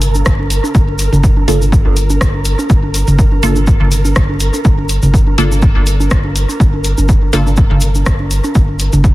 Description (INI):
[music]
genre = dub techno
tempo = 123 BPM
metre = 4/4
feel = swing 55% on 16ths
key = G minor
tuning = A4 = 435 Hz
[part]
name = soft dub sub bass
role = bass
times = 0.0-9.1 s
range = G1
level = -14 LUFS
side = equal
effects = sidechain pumping
[part]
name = punchy analog drum machine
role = drums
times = 0.0-8.9 s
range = hi-hat, rim click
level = -22 LUFS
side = equal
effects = soft clipping on snare, dub echo
[part]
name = tube shaker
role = percussion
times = 0.0-9.1 s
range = none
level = -25 LUFS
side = left 2 dB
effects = none
[part]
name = flickering grainy texture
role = texture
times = 0.0-9.1 s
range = Bb4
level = -25 LUFS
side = equal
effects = built-in reverb, sidechain pumping
[part]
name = electronic congas and toms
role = percussion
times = 0.1-9.0 s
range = none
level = -19 LUFS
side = right 1 dB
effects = sidechain pumping on toms, sidechain pumping on perc, dub echo
[part]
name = electronic kick drum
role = drums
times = 0.3-9.1 s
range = none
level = -12 LUFS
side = equal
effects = none
[part]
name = filtered dub chord stab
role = stabs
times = 1.5-7.5 s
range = Bb3 to A4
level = -21 LUFS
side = equal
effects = phaser, sidechain pumping, dub echo
[sound]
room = little or no reverb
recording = dense, heavily limited modern master, vinyl crackle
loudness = -10 LUFS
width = side -17 dB against mid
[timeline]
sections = 0.0-9.1 A section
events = none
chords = 0.0 Gm7